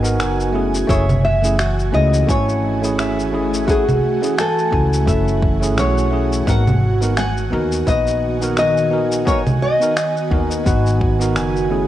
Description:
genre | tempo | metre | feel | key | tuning
sunset chillout | 86 BPM | 4/4 | swing 57% on 16ths | G# phrygian | A4 = 440 Hz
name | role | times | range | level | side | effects
nylon-string guitar | melody | 0.0-11.0 s | G#4 to F#5 | -21 LUFS | left 1 dB | cassette tape, analog delay
bell-like tine electric piano | accompaniment | 0.0-11.9 s | A3 to G#5 | -22 LUFS | moving between left 3 dB and right 3 dB | auto-pan, cassette tape
ethereal airy pad | sustained chords | 0.0-11.9 s | D#3 to G#5 | -25 LUFS | right 2 dB | ensemble chorus, built-in reverb, cassette tape
Celtic harp | arpeggios | 0.0-11.9 s | F#4 to G#5 | -26 LUFS | right 2 dB | cassette tape, tape echo
upright bass | bass | 0.0-11.9 s | F#1 to D#2 | -20 LUFS | equal | none
electronic shaker, finger snaps and congas | drums | 0.0-11.7 s | none | -23 LUFS | right 1 dB | cassette tape
electronic kick drum | drums | 0.9-11.2 s | none | -20 LUFS | equal | cassette tape
room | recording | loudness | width
light reverb, small room ambience | home recording on cassette | -15 LUFS | side -13 dB against mid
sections
0.0-11.9 A section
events
none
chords
0.0 G#m9; 0.5 F#m9; 6.5 G#m9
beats
0.20 | 0.89 1.59 2.29 2.99 | 3.69 4.38 5.08 5.78 | 6.47 7.17 7.87 8.57 | 9.27 9.96 10.66 11.36

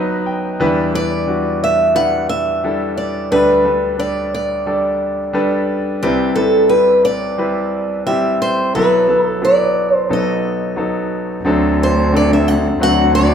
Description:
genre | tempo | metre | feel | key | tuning
acoustic folk-pop ballad | 88 BPM | 4/4 | straight | E minor | A4 = 439 Hz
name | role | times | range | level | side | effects
picked old ladder-braced acoustic guitar | melody | 0.0-13.3 s | F#4 to F#5 | -16 LUFS | right 1 dB | none
bright concert grand piano | accompaniment | 0.0-13.3 s | B1 to G5 | -18 LUFS | left 1 dB | none
rich cello | bass | 11.4-13.3 s | D2 | -15 LUFS | equal | none
room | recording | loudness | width
moderate large studio reverb, RT60 1.2 s | minimal, uncompressed stereo recording | -13 LUFS | side -8 dB against mid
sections
0.0-11.4 A section; 11.4-13.3 B section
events
none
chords
0.0 B; 0.6 Em7; 3.3 Gadd9/D; 6.0 Cmaj7; 8.7 B7sus4; 10.1 B7; 11.4 D7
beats
| 0.59 1.27 1.95 2.63 | 3.31 3.98 4.66 5.34 | 6.02 6.70 7.38 8.06 | 8.73 9.41 10.09 10.77 | 11.45 12.12 12.80

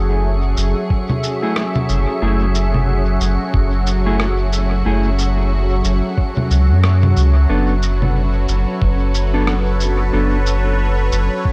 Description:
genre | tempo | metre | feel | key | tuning
ambient dub | 91 BPM | 4/4 | swing 59% on 16ths | F# minor | A4 = 440 Hz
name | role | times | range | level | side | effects
warm analog pad | sustained chords | 0.0-11.5 s | F#3 to E5 | -24 LUFS | equal | chorus
soft dub sub bass | bass | 0.0-11.3 s | F#1 to F#2 | -18 LUFS | equal | tube saturation
wind-like tuned noise texture | texture | 0.0-11.5 s | C#4 to C#6 | -31 LUFS | equal | built-in reverb
electronic shaker, congas and rim click | drums | 0.6-11.3 s | none | -26 LUFS | equal | dub echo
electronic kick drum | drums | 0.9-11.5 s | none | -19 LUFS | equal | none
mellow electric guitar | stabs | 1.4-10.4 s | A3 to A4 | -28 LUFS | equal | dub echo
room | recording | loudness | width
light reverb | none | -17 LUFS | mono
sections
0.0-11.5 A section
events
none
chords
0.0 F#m9; 7.5 Bm7/F#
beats
0.24 0.90 1.56 | 2.22 2.88 3.54 4.20 | 4.86 5.52 6.18 6.84 | 7.50 8.15 8.81 9.47 | 10.13 10.79 11.45

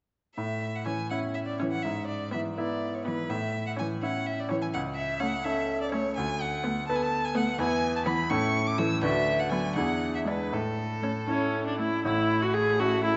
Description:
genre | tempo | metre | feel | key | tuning
quick classical-period movement for piano quartet | 82 BPM (dotted quarters) | 6/8 | rubato | A major | A4 = 440 Hz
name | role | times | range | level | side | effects
clear violin | melody | 0.4-13.2 s | A4 to E6 | -34 LUFS | equal | none
bright baby grand piano | accompaniment | 0.4-13.2 s | A1 to E5 | -32 LUFS | equal | none
rich cello | second line | 0.9-13.2 s | E3 to A3 | -37 LUFS | equal | none
clear viola | accompaniment | 0.9-13.2 s | A3 to G#4 | -33 LUFS | equal | none
room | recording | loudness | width
moderate scoring stage reverb, RT60 1.8 s | nothing above 7.8 kHz | -29 LUFS | mono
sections
0.4-12.1 A section; 12.1-13.2 B section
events
none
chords
0.4 A; 1.8 E/G#; 3.3 A; 4.7 A/C#; 6.2 Bm7/D; 7.6 E; 8.3 A; 9.0 Bm/D; 9.8 E7; 10.5 A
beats
| 0.37 1.11 | 1.84 2.57 | 3.30 4.02 | 4.74 5.46 | 6.17 6.88 | 7.59 8.30 | 9.03 9.77 | 10.53 11.29 | 12.05 12.79

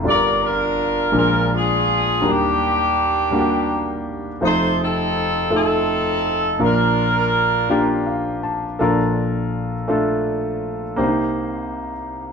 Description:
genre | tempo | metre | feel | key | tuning
gospel | 55 BPM (dotted quarters) | 6/8 | straight | Bb major | A4 = 440 Hz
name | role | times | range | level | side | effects
warm concert grand piano | accompaniment | 0.0-12.3 s | F1 to A5 | -20 LUFS | equal | none
warm horn section | melody | 0.1-8.1 s | Bb3 to D5 | -18 LUFS | equal | none
room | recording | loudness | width
moderate small room reverb, RT60 0.5 s | band playing live in one room, nothing above 10.5 kHz | -17 LUFS | side -6 dB against mid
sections
0.0-8.8 A section; 8.8-12.3 B section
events
grand piano fill 7.7-8.8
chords
0.0 Gm7; 1.1 Bb7; 2.2 Ebmaj7; 4.4 F7; 6.6 Bb; 8.8 Bbmaj7; 11.0 Cm7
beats
| 0.05 1.14 | 2.24 3.33 | 4.43 5.52 | 6.61 7.71 | 8.80 9.89 | 10.98 12.07

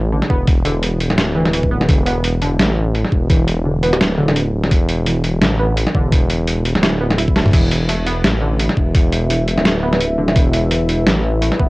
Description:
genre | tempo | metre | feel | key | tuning
half-time drum and bass | 170 BPM | 4/4 | swing 56% on 16ths, half-time | unclear | A4 = 440 Hz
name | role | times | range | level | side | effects
dark detuned saw bass | bass | 0.0-11.7 s | D1 to A1 | -18 LUFS | equal | tube saturation
warbly dusty pluck | arpeggios | 0.1-11.7 s | D3 to E4 | -22 LUFS | right 1 dB | chorus, cassette tape, analog delay
boom bap sampler-style drum kit | drums | 0.2-11.6 s | crash cymbal, hi-hat, snare drum, toms | -18 LUFS | equal | cassette tape
electronic kick drum | drums | 0.3-11.7 s | none | -14 LUFS | equal | overdrive, cassette tape
dark analog pad | sustained chords | 7.5-11.7 s | E4 to E5 | -23 LUFS | equal | chorus, sidechain pumping, cassette tape
room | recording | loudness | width
moderate booth ambience, RT60 0.2 s | home recording on cassette | -13 LUFS | side -22 dB against mid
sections
0.0-11.7 A section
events
drum fill 7.4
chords
0.0 E5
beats
0.12 | 0.48 0.83 1.18 1.53 | 1.89 2.24 2.59 2.95 | 3.30 3.65 4.01 4.36 | 4.71 5.07 5.42 5.77 | 6.12 6.48 6.83 7.18 | 7.54 7.89 8.24 8.59 | 8.95 9.30 9.65 10.01 | 10.36 10.71 11.06 11.42

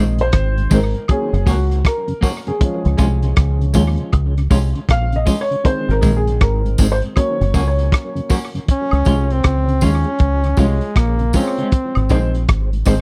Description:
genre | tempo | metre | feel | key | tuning
roots reggae | 79 BPM | 4/4 | swing 62% on 16ths | Db major | A4 = 440 Hz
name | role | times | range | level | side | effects
semi-hollow electric guitar | accompaniment | 0.0-13.0 s | Eb3 to Gb4 | -25 LUFS | equal | tremolo, tape echo
tonewheel organ | accompaniment | 0.0-13.0 s | Gb2 to Db4 | -28 LUFS | equal | chorus vibrato, slow rotary speaker, tape echo
dark upright piano | stabs | 0.0-13.0 s | Eb3 to F5 | -24 LUFS | equal | none
deep dub fingered electric bass | bass | 0.0-13.0 s | Gb1 to Eb2 | -19 LUFS | equal | none
crunchy breakbeat drum kit | drums | 0.2-13.0 s | hi-hat, kick drum, rim click | -18 LUFS | equal | none
tambourine and woodblock | percussion | 0.7-13.0 s | none | -33 LUFS | equal | none
clear flugelhorn | melody | 8.7-12.5 s | Ab3 to Db4 | -23 LUFS | equal | tape echo
room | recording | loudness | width
little or no reverb | dry, close 1970s-style studio recording | -17 LUFS | mono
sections
0.0-8.7 A section; 8.7-13.0 B section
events
upright piano solo 0.0-8.7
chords
0.0 Ab; 1.1 Gb; 2.6 Db; 5.6 Ab; 7.2 Gb; 8.7 Db; 11.7 Ab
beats
0.33 1.09 1.85 | 2.61 3.37 4.13 4.89 | 5.64 6.40 7.16 7.92 | 8.68 9.44 10.20 10.96 | 11.72 12.48

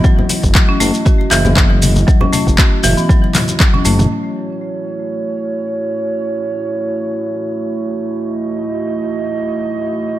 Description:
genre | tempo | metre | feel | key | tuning
afro house | 118 BPM | 4/4 | swing 54% on 16ths | F# dorian | A4 = 445 Hz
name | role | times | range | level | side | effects
dark analog pad | sustained chords | 0.0-10.2 s | A3 to D#5 | -20 LUFS | right 2 dB | chorus, sidechain pumping
marimba with medium hard mallets | arpeggios | 0.0-4.0 s | E3 to F#4 | -18 LUFS | left 1 dB | sidechain pumping, low-pass filter, digital delay
electronic kick drum | drums | 0.0-3.7 s | none | -12 LUFS | equal | overdrive
maracas | percussion | 0.0-4.1 s | none | -24 LUFS | left 2 dB | none
congas | percussion | 0.2-4.1 s | none | -22 LUFS | left 2 dB | none
deep house drum kit | drums | 0.3-4.2 s | crash cymbal, handclaps, hi-hat, toms | -18 LUFS | equal | overdrive, low-pass filter on hats, low-pass filter on snare, low-pass filter on toms, low-pass filter on cymbals
smooth synth bass | bass | 0.4-4.1 s | F#1 | -15 LUFS | equal | tube saturation, sidechain pumping
room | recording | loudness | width
light reverb | none | -13 LUFS | side -14 dB against mid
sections
0.0-4.1 A section; 4.1-10.2 B section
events
drum fill 3.9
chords
0.0 F#m7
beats
| 0.04 0.55 1.06 1.57 | 2.08 2.58 3.09 3.60 | 4.11 4.62 5.13 5.63 | 6.14 6.65 7.16 7.67 | 8.18 8.69 9.19 9.70

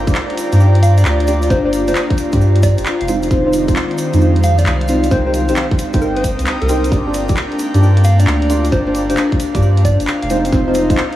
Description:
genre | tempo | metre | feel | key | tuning
UK garage, two-step garage | 133 BPM | 4/4 | swing 67% on 16ths | G phrygian | A4 = 436 Hz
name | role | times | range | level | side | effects
ethereal airy pad | sustained chords | 0.0-11.2 s | Ab3 to G4 | -26 LUFS | left 2 dB | ensemble chorus, built-in reverb, phaser, sidechain pumping
deep mellow chord stab | stabs | 0.0-11.0 s | Ab3 to G5 | -19 LUFS | right 1 dB | chorus, phaser, tape echo
soft dub sub bass | bass | 0.0-11.0 s | Eb1 to G2 | -14 LUFS | equal | none
airy breathy pad | texture | 0.0-11.2 s | Eb3 to Eb6 | -22 LUFS | equal | chorus, sidechain pumping
electronic kick drum | drums | 0.1-11.0 s | none | -17 LUFS | equal | none
garage drum kit | drums | 0.1-11.2 s | handclaps, hi-hat, snare drum | -25 LUFS | equal | none
cabasa | percussion | 0.1-11.1 s | none | -34 LUFS | right 2 dB | none
soft struck synth lead | melody | 0.8-10.4 s | Bb4 to F5 | -23 LUFS | equal | chorus, tape echo
room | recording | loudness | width
moderate cathedral reverb, RT60 6.7 s | dreamy mix soaked in reverb, vinyl crackle | -12 LUFS | side -14 dB against mid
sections
0.0-11.2 A section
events
none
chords
0.0 Gm7; 3.1 Fm7; 5.1 Cm7; 6.9 Gm7; 10.3 Fm7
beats
0.15 0.60 1.05 | 1.50 1.96 2.41 2.86 | 3.31 3.76 4.21 4.66 | 5.11 5.56 6.01 6.47 | 6.92 7.37 7.82 8.27 | 8.72 9.17 9.62 10.07 | 10.53 10.98

